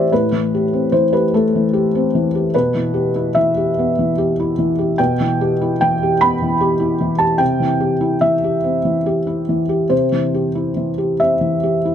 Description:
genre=neoclassical minimalist piano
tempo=49 BPM (dotted quarters)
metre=6/8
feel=uneven beats, rubato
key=unclear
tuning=A4 = 440 Hz
part: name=felt-muted upright piano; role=solo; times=0.0-11.9 s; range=A2 to B5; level=-15 LUFS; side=equal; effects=none
room=little or no reverb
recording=close, detailed microphones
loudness=-15 LUFS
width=side -9 dB against mid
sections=0.0-11.9 A section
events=none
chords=0.0 Am7; 2.5 Em/B; 7.4 C

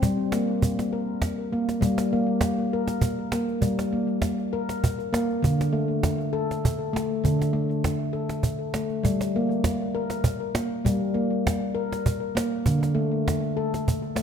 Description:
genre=world meditative, meditative tuned percussion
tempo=100 BPM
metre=3/4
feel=swing 54% on 16ths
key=G minor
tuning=A4 = 439 Hz
part: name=handpan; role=arpeggios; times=0.0-14.2 s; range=D3 to Bb4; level=-24 LUFS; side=left 1 dB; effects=ping-pong delay
part: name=cajon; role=percussion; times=0.0-14.2 s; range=none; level=-27 LUFS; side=right 2 dB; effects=none
room=wet scoring stage reverb, RT60 1.7 s, small room ambience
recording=none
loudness=-23 LUFS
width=side -8 dB against mid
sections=0.0-1.8 A section; 1.8-14.2 B section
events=none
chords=0.0 Gm; 5.4 D5; 9.0 Gm; 12.7 D5

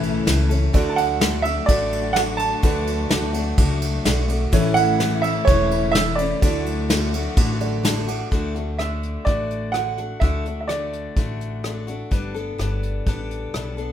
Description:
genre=honky-tonk and classic country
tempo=127 BPM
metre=4/4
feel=straight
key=D major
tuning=A4 = 440 Hz
part: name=dark concert grand piano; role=accompaniment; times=0.0-8.3 s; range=E4 to A5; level=-32 LUFS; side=right 8 dB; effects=none
part: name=picked steel-string acoustic guitar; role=accompaniment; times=0.0-13.9 s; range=A2 to A4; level=-26 LUFS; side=left 4 dB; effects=none
part: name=warm studio string section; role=sustained chords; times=0.0-8.3 s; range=C#3 to F#4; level=-31 LUFS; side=equal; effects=none
part: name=upright bass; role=bass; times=0.0-13.9 s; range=E1 to D2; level=-26 LUFS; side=equal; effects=none
part: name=soft brush drum kit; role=drums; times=0.0-13.9 s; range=hi-hat, kick drum, ride cymbal, rim click, snare drum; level=-22 LUFS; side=equal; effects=none
part: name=bright upright piano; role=melody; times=0.9-11.8 s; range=C#5 to A5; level=-23 LUFS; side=right 5 dB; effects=none
room=light reverb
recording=minimal, uncompressed stereo recording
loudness=-19 LUFS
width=side -10 dB against mid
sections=0.0-8.3 A section; 8.3-13.9 B section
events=grand piano fill 7.6-8.3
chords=0.0 A; 0.7 D; 4.5 A; 6.4 D; 12.1 Gadd9

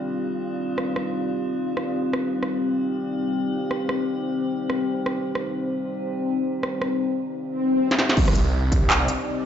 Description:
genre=half-time drum and bass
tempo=164 BPM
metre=4/4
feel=swing 59% on 16ths, half-time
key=C minor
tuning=A4 = 440 Hz
part: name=dark analog pad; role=sustained chords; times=0.0-9.5 s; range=C4 to D5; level=-26 LUFS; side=left 2 dB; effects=chorus, sidechain pumping
part: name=metallic inharmonic drone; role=texture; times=0.0-7.5 s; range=G3 to G4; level=-31 LUFS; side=right 3 dB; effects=chorus, built-in reverb
part: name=industrial drum kit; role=drums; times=0.8-9.2 s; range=crash cymbal, handclaps, hi-hat, rim click, snare drum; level=-25 LUFS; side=right 1 dB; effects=low-pass filter on snare, low-pass filter on hats, low-pass filter on cymbals, low-pass filter on room
part: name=swell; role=sound effects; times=7.5-8.2 s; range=none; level=-26 LUFS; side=left 2 dB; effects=none
part: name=phased detuned saw bass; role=bass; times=8.2-9.1 s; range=C2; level=-22 LUFS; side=right 1 dB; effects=phaser
part: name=electronic kick drum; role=drums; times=8.2-8.8 s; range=none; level=-22 LUFS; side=equal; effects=none
room=moderate huge ambient reverb, RT60 4.8 s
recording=played on a big sound system in a bare room, large studio reverb, nothing above 7.8 kHz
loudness=-22 LUFS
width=side -9 dB against mid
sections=0.0-8.2 A section; 8.2-9.5 B section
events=filter sweep on analog synth pad 0.0-8.2; swell 7.5-8.2; drum fill 7.9; drop 8.2-9.5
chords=0.0 Cmadd9

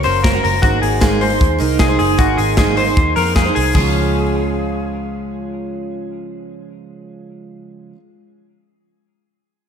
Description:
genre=jangly indie pop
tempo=153 BPM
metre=4/4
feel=straight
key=Db major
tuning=A4 = 441 Hz
part: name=picked steel-string acoustic guitar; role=accompaniment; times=0.0-8.0 s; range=Db3 to Db5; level=-20 LUFS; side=right 5 dB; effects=none
part: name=direct-recorded clean electric guitar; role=arpeggios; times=0.0-4.9 s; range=Gb4 to C5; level=-18 LUFS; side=left 4 dB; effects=lush chorus, ping-pong delay
part: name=vintage muted picked electric bass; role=bass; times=0.0-7.9 s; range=Gb1 to F2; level=-20 LUFS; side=equal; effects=none
part: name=modern studio drum kit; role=drums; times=0.1-3.8 s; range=crash cymbal, hi-hat, kick drum, snare drum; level=-18 LUFS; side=equal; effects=none
room=moderate lush hall reverb, RT60 2.1 s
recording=dreamy mix soaked in reverb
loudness=-14 LUFS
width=side -7 dB against mid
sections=0.0-3.8 A section; 3.8-6.9 B section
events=none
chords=0.0 Gb; 0.6 Abadd9; 3.8 Db

